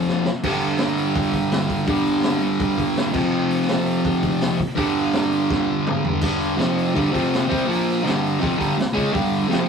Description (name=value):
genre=garage rock duo or trio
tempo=166 BPM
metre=4/4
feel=straight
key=unclear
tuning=A4 = 440 Hz
part: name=fuzz guitar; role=riff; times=0.0-9.7 s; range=F2 to C#4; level=-19 LUFS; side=equal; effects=distortion
part: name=raw garage drum kit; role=drums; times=0.1-9.6 s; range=crash cymbal, hi-hat, kick drum, snare drum, toms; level=-26 LUFS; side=left 1 dB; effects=none
room=moderate stone room reverb, RT60 1.4 s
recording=rough rehearsal-room recording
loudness=-18 LUFS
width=side -6 dB against mid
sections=0.0-6.2 A section; 6.2-9.7 B section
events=drum fill 0.1-0.4, 5.5-6.2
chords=0.4 G5; 3.1 F5; 4.8 G5; 6.6 F5; 6.9 G5; 7.1 F5; 7.5 C5; 7.7 Bb5; 8.0 G5